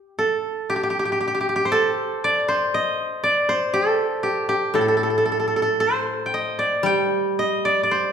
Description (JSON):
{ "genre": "japanese traditional, Japanese chamber music", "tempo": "58 BPM", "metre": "2/4", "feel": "rubato", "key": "unclear", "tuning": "A4 = 440 Hz", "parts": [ { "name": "koto", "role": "melody", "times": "0.0-8.1 s", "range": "G4 to G5", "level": "-20 LUFS", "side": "right 1 dB", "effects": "none" }, { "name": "koto", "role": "accompaniment", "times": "4.7-8.1 s", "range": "A2 to G3", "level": "-24 LUFS", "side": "left 1 dB", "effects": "none" } ], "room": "wet recital hall reverb, RT60 1.4 s", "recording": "recorded in a church or concert hall", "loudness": "-19 LUFS", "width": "side -7 dB against mid", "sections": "0.0-8.1 A section", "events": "none", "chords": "none" }